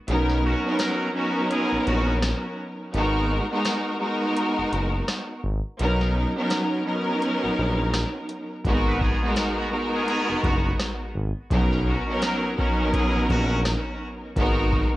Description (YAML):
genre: hip hop, boom-bap hip-hop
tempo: 84 BPM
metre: 4/4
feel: swing 60% on 16ths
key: unclear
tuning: A4 = 439 Hz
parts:
  - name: clear studio string section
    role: accompaniment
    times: 0.1-15.0 s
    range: F#3 to A#4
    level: -24 LUFS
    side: equal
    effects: high-pass filter, low-pass filter, cassette tape
  - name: smooth gliding synth bass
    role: bass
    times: 0.1-14.8 s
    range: F#1 to B1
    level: -26 LUFS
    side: equal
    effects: none
  - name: booming analog drum machine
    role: drums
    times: 0.1-14.9 s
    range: hi-hat, kick drum, rim click, snare drum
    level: -27 LUFS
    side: equal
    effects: none
  - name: muted trumpet section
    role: stabs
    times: 0.4-2.1, 8.9-13.6 s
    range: F#3 to B4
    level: -31 LUFS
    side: equal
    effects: high-pass filter, low-pass filter, cassette tape, analog delay
room: light reverb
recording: home recording on cassette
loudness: -22 LUFS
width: side -16 dB against mid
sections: 0.0-15.0 A section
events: break 0.0-8.6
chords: 0.1 Bmaj9; 2.9 G#m9; 5.8 Bmaj9; 8.6 G#m9; 11.5 Bmaj9; 14.4 G#m9